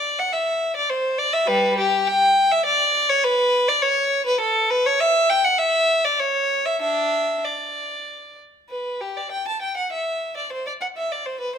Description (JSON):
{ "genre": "classical, baroque-style suite movement for unaccompanied violin", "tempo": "101 BPM", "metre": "3/4", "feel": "rubato", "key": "unclear", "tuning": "A4 = 439 Hz", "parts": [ { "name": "rich violin", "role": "solo", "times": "0.0-11.6 s", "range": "G3 to A5", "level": "-19 LUFS", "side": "equal", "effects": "none" } ], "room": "moderate stone room reverb, RT60 1.4 s", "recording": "minimal, uncompressed stereo recording", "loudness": "-18 LUFS", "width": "side -8 dB against mid", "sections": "0.0-8.7 A section; 8.7-11.6 A section", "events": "none", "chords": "none", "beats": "0.32 0.90 | 1.48 2.07 2.65 | 3.23 3.81 4.40 | 5.00 5.59 6.19 | 6.81 7.45 8.07 | 8.70 9.31 9.91 | 10.51 11.11" }